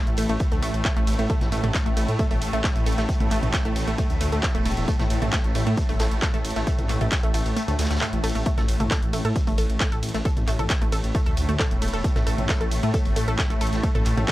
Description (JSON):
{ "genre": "driving peak-time techno", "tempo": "134 BPM", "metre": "4/4", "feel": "straight", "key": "unclear", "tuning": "A4 = 440 Hz", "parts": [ { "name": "swarming drone", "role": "drone", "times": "0.0-14.3 s", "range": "A2 to A3", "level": "-30 LUFS", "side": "equal", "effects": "built-in reverb, sidechain pumping" }, { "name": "detuned saw bass", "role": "bass", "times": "0.1-14.2 s", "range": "E1 to A2", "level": "-26 LUFS", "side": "equal", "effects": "sidechain pumping" }, { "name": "techno drum kit", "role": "drums", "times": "0.1-14.3 s", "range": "handclaps, hi-hat, ride cymbal, toms", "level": "-30 LUFS", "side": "equal", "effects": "sidechain pumping on hats, sidechain pumping on cymbals, sidechain pumping on toms" }, { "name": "wide unison pluck", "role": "riff", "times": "0.2-14.3 s", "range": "A3 to A4", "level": "-30 LUFS", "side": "equal", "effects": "sidechain pumping, analog delay" }, { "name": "loose indie drum kit", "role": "drums", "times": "0.2-14.3 s", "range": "hi-hat, snare drum", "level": "-38 LUFS", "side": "equal", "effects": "none" }, { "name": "electronic kick drum", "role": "drums", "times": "0.4-14.3 s", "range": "none", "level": "-24 LUFS", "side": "equal", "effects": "none" } ], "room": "little or no reverb", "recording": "dry, gritty hardware recording", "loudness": "-21 LUFS", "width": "side -16 dB against mid", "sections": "0.0-14.3 A section", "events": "kick drops out 7.6-8.5", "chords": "none" }